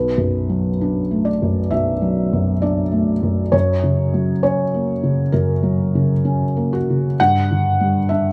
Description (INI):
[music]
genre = neoclassical minimalist piano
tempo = 66 BPM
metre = 4/4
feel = rubato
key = B minor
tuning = A4 = 440 Hz
[part]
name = felt-muted upright piano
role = solo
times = 0.0-8.3 s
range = B1 to F#5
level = -18 LUFS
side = equal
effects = none
[sound]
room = moderate large studio reverb, RT60 1.2 s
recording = band playing live in one room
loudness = -18 LUFS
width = mono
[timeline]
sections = 0.0-8.3 A section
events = none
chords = 0.0 Bm7; 3.5 F#; 7.2 G5